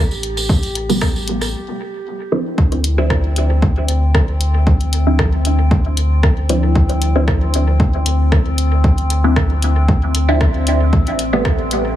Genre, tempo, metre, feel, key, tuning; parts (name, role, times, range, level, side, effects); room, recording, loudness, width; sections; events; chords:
dub techno; 115 BPM; 4/4; swing 54% on 16ths; D minor; A4 = 440 Hz
warm sub bass; bass; 0.0-12.0 s; A1 to D2; -16 LUFS; equal; sidechain pumping
drifting glass-harmonics texture; texture; 0.0-12.0 s; C4 to G4; -26 LUFS; left 2 dB; chorus, built-in reverb, sidechain pumping
tambourine; percussion; 0.1-1.5 s; -26 LUFS; right 2 dB
punchy analog drum machine; drums; 0.2-11.8 s; hi-hat, rim click; -25 LUFS; equal; dub echo
electronic kick drum; drums; 0.5-11.6 s; -16 LUFS; equal
filtered dub chord stab; stabs; 0.9-11.6 s; C3 to E4; -21 LUFS; equal; phaser, vintage 12-bit sampler grit, sidechain pumping, dub echo
little or no reverb; heavily compressed radio sound, small room ambience; -13 LUFS; side -12 dB against mid
0.0-2.6 A section; 2.6-12.0 A section
filter sweep on synth stab 0.0-2.6; break 1.5-2.6
0.0 Am7; 2.6 Dm9; 10.9 Am9